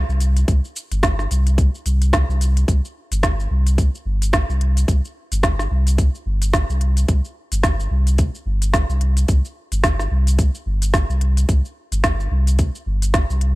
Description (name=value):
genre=organic downtempo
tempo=109 BPM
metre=4/4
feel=swing 58% on 16ths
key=unclear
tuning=A4 = 442 Hz
part: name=warm sub bass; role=bass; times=0.0-13.6 s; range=G1 to C2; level=-17 LUFS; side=equal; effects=tube saturation, sidechain pumping
part: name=organic electronic drum kit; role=drums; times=0.1-13.5 s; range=hi-hat, shaker, snare drum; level=-24 LUFS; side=equal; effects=none
part: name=electronic kick drum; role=drums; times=0.5-13.3 s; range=none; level=-19 LUFS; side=equal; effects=none
room=little or no reverb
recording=none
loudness=-16 LUFS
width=side -20 dB against mid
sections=0.0-2.7 A section; 2.7-13.6 A section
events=none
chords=none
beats=| 0.48 1.03 1.58 2.13 | 2.68 3.23 3.78 4.33 | 4.88 5.43 5.98 6.53 | 7.08 7.63 8.19 8.74 | 9.29 9.84 10.39 10.94 | 11.49 12.04 12.59 13.14